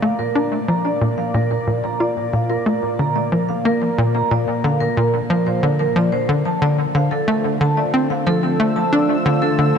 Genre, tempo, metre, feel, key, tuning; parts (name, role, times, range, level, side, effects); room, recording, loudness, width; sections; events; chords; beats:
ambient, sequencer-driven space music; 91 BPM; 4/4; straight; Bb lydian; A4 = 441 Hz
lush unison pad; sustained chords; 0.0-9.8 s; Bb2 to E6; -25 LUFS; left 1 dB; chorus
vibraphone with medium mallets; arpeggios; 0.0-9.7 s; A4 to Bb5; -22 LUFS; moving between left 1 dB and right 6 dB; auto-pan, low-pass filter, analog delay
tight sequencer bass; riff; 0.0-9.7 s; Bb2 to F4; -18 LUFS; left 1 dB; wide subtle chorus, cassette tape, analog delay
wet huge ambient reverb, RT60 8.2 s; cassette tape; -16 LUFS; side -7 dB against mid
0.0-9.8 A section
fade-in on analog synth pad 0.0-9.8; filter sweep on vibraphone 0.0-9.8
0.0 Bbadd9; 6.3 Dm7
0.35 | 1.01 1.67 2.33 2.99 | 3.65 4.31 4.97 5.63 | 6.29 6.95 7.61 8.27 | 8.93 9.59